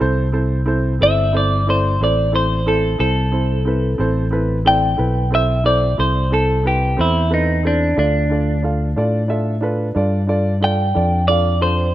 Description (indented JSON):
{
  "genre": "blues",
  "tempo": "60 BPM (dotted quarters)",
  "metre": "12/8",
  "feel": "straight",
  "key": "A minor",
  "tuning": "A4 = 438 Hz",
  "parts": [
    { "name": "clear grand piano", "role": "accompaniment", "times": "0.0-11.9 s", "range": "C4 to F5", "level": "-22 LUFS", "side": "right 2 dB", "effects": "none" },
    { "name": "fingered electric bass", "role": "bass", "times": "0.0-11.9 s", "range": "G1 to A2", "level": "-18 LUFS", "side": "equal", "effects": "none" },
    { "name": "clean electric guitar", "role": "second line", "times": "1.0-11.9 s", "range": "D4 to G5", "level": "-18 LUFS", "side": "equal", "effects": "wide subtle chorus" }
  ],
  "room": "light reverb, studio reverb",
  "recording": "rough home demo mix",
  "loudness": "-15 LUFS",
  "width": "side -14 dB against mid",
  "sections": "0.0-11.9 A section",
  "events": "clean electric guitar solo 0.0-11.9",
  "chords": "0.0 Am; 8.0 Dm"
}